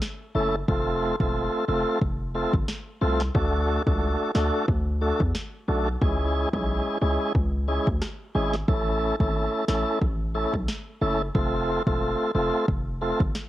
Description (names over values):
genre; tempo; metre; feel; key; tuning
dancehall; 90 BPM; 4/4; swing 56% on 16ths; unclear; A4 = 440 Hz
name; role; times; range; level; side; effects
afro-pop drum kit; drums; 0.0-13.5 s; kick drum, rim click, snare drum; -28 LUFS; equal; cassette tape
tonewheel organ; accompaniment; 0.3-13.2 s; G#3 to A4; -26 LUFS; equal; overdrive, fast rotary speaker, sidechain pumping, cassette tape
hard-hitting 808-style bass; bass; 0.3-13.3 s; E1 to E2; -27 LUFS; equal; none
room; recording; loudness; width
digital ambience; home recording on cassette; -23 LUFS; side -14 dB against mid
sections
0.0-13.5 A section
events
none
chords
0.0 A; 0.7 F; 3.3 D; 6.0 C#m; 8.7 A; 11.3 F